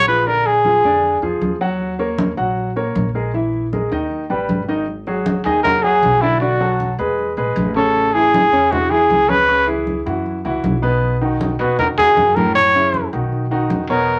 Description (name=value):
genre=Afro-Cuban jazz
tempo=156 BPM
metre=4/4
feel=straight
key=Eb minor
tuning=A4 = 439 Hz
part: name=breathy trumpet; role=melody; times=0.0-1.2, 5.4-14.2 s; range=E4 to C#5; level=-16 LUFS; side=equal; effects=none
part: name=upright bass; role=bass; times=0.0-14.2 s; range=Ab1 to F#2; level=-27 LUFS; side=equal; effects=none
part: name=warm baby grand piano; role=accompaniment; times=0.1-14.2 s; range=A2 to Gb5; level=-23 LUFS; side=equal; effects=none
part: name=congas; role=percussion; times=0.3-14.2 s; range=none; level=-27 LUFS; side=equal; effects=none
room=wet small room reverb, RT60 0.5 s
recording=none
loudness=-17 LUFS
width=mono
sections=0.0-4.9 A section; 4.9-14.2 B section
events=none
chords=0.3 Bb7; 1.8 Ebm7; 3.3 Emaj7#11/A#; 4.1 Ebaug; 4.9 G#m7; 6.4 Bm7; 7.2 E6; 8.0 Amaj7; 9.5 C#madd11; 10.3 F#5; 11.0 B; 12.6 F#m7; 13.3 Badd9